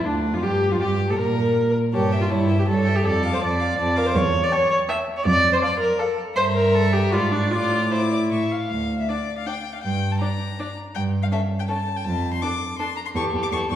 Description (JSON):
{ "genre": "quick classical-period movement for string quartet", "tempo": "161 BPM", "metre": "3/4", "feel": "rubato", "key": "D minor", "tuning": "A4 = 441 Hz", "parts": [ { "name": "rich violin", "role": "melody", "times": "0.0-13.8 s", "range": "D4 to D6", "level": "-30 LUFS", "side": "left 5 dB", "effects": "none" }, { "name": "dark violin", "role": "second line", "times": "0.0-13.8 s", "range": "D4 to G5", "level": "-30 LUFS", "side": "left 2 dB", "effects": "none" }, { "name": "rich viola", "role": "accompaniment", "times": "0.0-13.8 s", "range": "C#4 to E5", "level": "-22 LUFS", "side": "equal", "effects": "none" }, { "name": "dark cello", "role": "bass", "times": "0.1-13.8 s", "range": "D2 to Bb2", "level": "-23 LUFS", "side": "right 2 dB", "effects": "none" } ], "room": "wet recital hall reverb, RT60 1.6 s", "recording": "heard from further back in the room", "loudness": "-19 LUFS", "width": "side -11 dB against mid", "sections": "0.0-8.7 A section; 8.7-13.8 A section", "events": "none", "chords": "0.0 Dm; 0.8 Gm; 1.9 A7/G; 3.0 Dm/F; 4.2 A5/E; 5.3 F6; 6.4 Edim/G; 7.1 G#dim7; 7.5 Asus4; 8.3 A; 8.7 Dmadd11; 9.8 Gm; 11.0 A7/G; 12.1 Dm/F; 13.1 A5" }